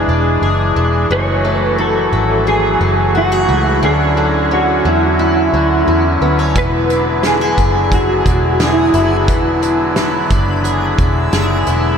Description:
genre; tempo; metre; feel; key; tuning
dream pop; 88 BPM; 4/4; straight; E mixolydian; A4 = 440 Hz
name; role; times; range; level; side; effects
chamber organ, soft reed; sustained chords; 0.0-12.0 s; D3 to G#4; -18 LUFS; equal; shimmer reverb
picked twelve-string acoustic guitar; arpeggios; 0.0-12.0 s; F#2 to G#4; -19 LUFS; left 2 dB; analog chorus, analog delay, shimmer reverb
vintage muted fingered electric bass; bass; 0.0-12.0 s; E1 to E2; -18 LUFS; equal; none
mellow electric guitar; melody; 1.1-9.1 s; E4 to C#5; -17 LUFS; right 1 dB; ensemble chorus, analog delay, shimmer reverb
loose indie drum kit; drums; 6.6-11.8 s; hi-hat, kick drum, snare drum; -19 LUFS; equal; none
backwards swelling texture; texture; 8.8-12.0 s; G#5 to E6; -29 LUFS; right 2 dB; built-in reverb, analog delay, shimmer reverb
room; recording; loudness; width
wet huge ambient reverb, RT60 7.2 s; dreamy mix soaked in reverb; -11 LUFS; side -7 dB against mid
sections
0.0-12.0 A section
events
none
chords
0.0 E9; 1.1 F#m9; 3.8 Dmaj9; 6.6 E9

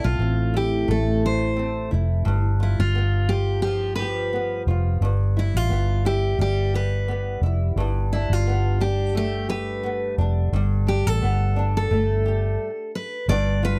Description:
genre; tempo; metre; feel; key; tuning
acoustic pop; 87 BPM; 4/4; swing 55% on 16ths; unclear; A4 = 440 Hz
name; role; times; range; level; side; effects
picked steel-string acoustic guitar; melody; 0.0-13.8 s; E4 to D5; -28 LUFS; equal; none
flamenco guitar; accompaniment; 0.0-13.8 s; G2 to B4; -30 LUFS; equal; double-tracked
vintage muted fingered electric bass; bass; 0.0-13.8 s; F1 to B1; -24 LUFS; equal; none
room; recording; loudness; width
little or no reverb; dry, close 1970s-style studio recording; -23 LUFS; mono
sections
0.0-13.3 A section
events
stop 12.6-13.3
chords
0.0 Amadd9; 2.3 G7; 5.0 Em/G; 7.8 Gadd9; 13.3 G7

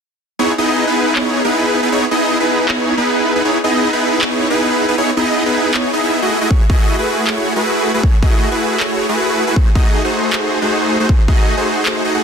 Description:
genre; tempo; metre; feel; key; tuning
future bass; 157 BPM; 4/4; half-time; C# minor; A4 = 442 Hz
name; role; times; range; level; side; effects
supersaw chords; riff; 0.4-12.2 s; A3 to F#5; -14 LUFS; equal; sidechain pumping, tape echo
electronic handclaps; drums; 1.2-11.9 s; none; -22 LUFS; equal; none
electronic kick drum; drums; 6.5-11.4 s; none; -12 LUFS; equal; none
room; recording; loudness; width
light reverb; dense, heavily limited modern master; -13 LUFS; side -6 dB against mid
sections
0.4-12.2 A section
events
none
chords
0.4 C#m9; 9.6 G#7b9

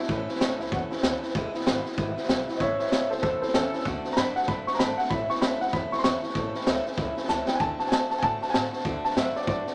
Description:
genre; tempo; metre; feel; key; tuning
rockabilly; 192 BPM; 4/4; swing 60% on 8ths; A major; A4 = 441 Hz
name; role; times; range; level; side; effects
warm upright piano; melody; 0.0-9.7 s; C#4 to C#6; -31 LUFS; equal; none
picked acoustic archtop guitar; accompaniment; 0.0-9.7 s; E2 to F#4; -35 LUFS; equal; none
vintage drum kit; drums; 0.0-9.7 s; hi-hat, kick drum, snare drum; -30 LUFS; equal; none
upright bass; bass; 0.1-9.7 s; E1 to A2; -40 LUFS; equal; none
room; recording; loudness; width
moderate small room reverb, RT60 0.5 s; none; -27 LUFS; mono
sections
0.0-2.6 A section; 2.6-9.7 B section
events
upright piano solo 2.6-9.7; drum fill 7.3-7.6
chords
0.1 A; 1.4 E; 2.6 A; 3.9 D; 5.1 A; 7.6 D

